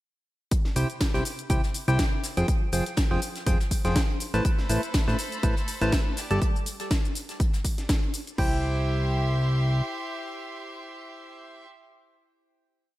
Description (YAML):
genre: piano house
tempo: 122 BPM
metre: 4/4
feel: swing 55% on 16ths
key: C major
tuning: A4 = 440 Hz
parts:
  - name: electronic kick drum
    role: drums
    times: 0.5-8.5 s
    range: none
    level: -25 LUFS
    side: equal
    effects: overdrive
  - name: house drum kit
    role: drums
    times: 0.5-8.5 s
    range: crash cymbal, hi-hat, shaker, snare drum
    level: -33 LUFS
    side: equal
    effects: overdrive, gated reverb
  - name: jazz brush drum kit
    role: drums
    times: 0.5-8.4 s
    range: hi-hat, snare drum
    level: -41 LUFS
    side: left 2 dB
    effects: high-pass filter on hats, high-pass filter on snare, high-pass filter on room, gated reverb
  - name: percussive organ stab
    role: riff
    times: 0.8-11.7 s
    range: C3 to A5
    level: -30 LUFS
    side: equal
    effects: chorus, sidechain pumping, digital delay
  - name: fat analog bass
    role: bass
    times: 0.8-9.8 s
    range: F1 to C2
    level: -25 LUFS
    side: equal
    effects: sidechain pumping
  - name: clear chamber violin section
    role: sustained chords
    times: 4.4-11.7 s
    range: G4 to C6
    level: -36 LUFS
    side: right 1 dB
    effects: sidechain pumping
room: light reverb, studio reverb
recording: bright 1980s-style digital production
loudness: -23 LUFS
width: side -16 dB against mid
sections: 0.5-8.4 drop; 8.4-12.3 final chord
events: drop 0.5-8.4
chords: 0.5 C; 2.2 Fmadd9; 4.2 Amadd9; 6.2 Gsus2; 8.4 C